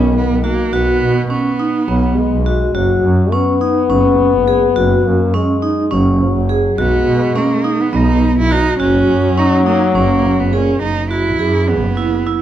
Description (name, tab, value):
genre	contemporary instrumental, chamber music in an uneven meter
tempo	208 BPM (eighths)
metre	7/8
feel	straight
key	F# mixolydian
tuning	A4 = 439 Hz
part	warm cello	melody	0.0-2.4, 6.8-12.4 s	A#3 to E4	-19 LUFS	right 3 dB	none
part	mellow French horn	second line	0.0-10.8 s	A#2 to B3	-18 LUFS	left 7 dB	none
part	vibraphone with medium hard mallets	arpeggios	0.0-12.4 s	B3 to G#4	-16 LUFS	right 2 dB	none
part	clear double bass	bass	0.0-12.1 s	F#1 to B2	-17 LUFS	right 1 dB	none
room	light reverb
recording	dark, warm production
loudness	-12 LUFS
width	side -11 dB against mid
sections	0.0-10.8 A section; 10.8-12.4 B section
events	none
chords	0.0 B; 2.8 F#sus4; 6.8 B; 8.8 F#5; 10.8 Eadd9/F#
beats	0.16 0.45 | 0.73 1.02 1.31 1.60 1.89 2.17 2.46 | 2.75 3.04 3.33 3.61 3.90 4.19 4.48 | 4.77 5.05 5.34 5.63 5.92 6.21 6.49 | 6.78 7.07 7.36 7.65 7.93 8.22 8.51 | 8.80 9.09 9.38 9.66 9.95 10.24 10.53 | 10.82 11.11 11.39 11.68 11.97 12.26